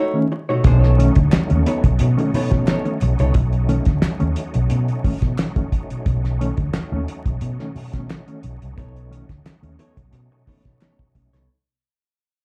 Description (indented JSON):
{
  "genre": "funk",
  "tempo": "89 BPM",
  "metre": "4/4",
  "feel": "straight",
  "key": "B mixolydian",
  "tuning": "A4 = 440 Hz",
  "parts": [
    { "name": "vintage hollow-body jazz guitar", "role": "accompaniment", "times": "0.0-3.4, 8.8-11.5 s", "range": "A3 to C#5", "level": "-26 LUFS", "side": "equal", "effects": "none" },
    { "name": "reed electric piano", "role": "stabs", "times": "0.1-11.3 s", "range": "B2 to C#4", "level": "-26 LUFS", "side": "equal", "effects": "fast tremolo" },
    { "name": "overdriven tonewheel organ", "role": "sustained chords", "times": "0.6-11.4 s", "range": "F#3 to D#4", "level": "-34 LUFS", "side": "equal", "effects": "fast rotary speaker, chorus vibrato" },
    { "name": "vintage muted fingered electric bass", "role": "bass", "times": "0.6-11.5 s", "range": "B1 to B2", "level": "-21 LUFS", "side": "equal", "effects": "none" },
    { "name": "cloth-damped thuddy drum kit", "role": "drums", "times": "0.6-11.5 s", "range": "hi-hat, kick drum, snare drum", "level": "-22 LUFS", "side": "equal", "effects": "none" },
    { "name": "group handclap", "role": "percussion", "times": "1.3-11.0 s", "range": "none", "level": "-38 LUFS", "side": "equal", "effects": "none" }
  ],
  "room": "light reverb",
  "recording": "live gig heard through the venue's PA, club ambience, vinyl crackle",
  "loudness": "-19 LUFS",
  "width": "mono",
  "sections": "0.6-11.5 A section",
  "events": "break 0.0-0.6, 3.4-8.8; fade-out 0.6-11.5",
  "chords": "0.0 B9",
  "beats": "| 0.64 1.32 2.00 2.67 | 3.35 4.03 4.70 5.38 | 6.06 6.74 7.41 8.09 | 8.77 9.45 10.13 10.81"
}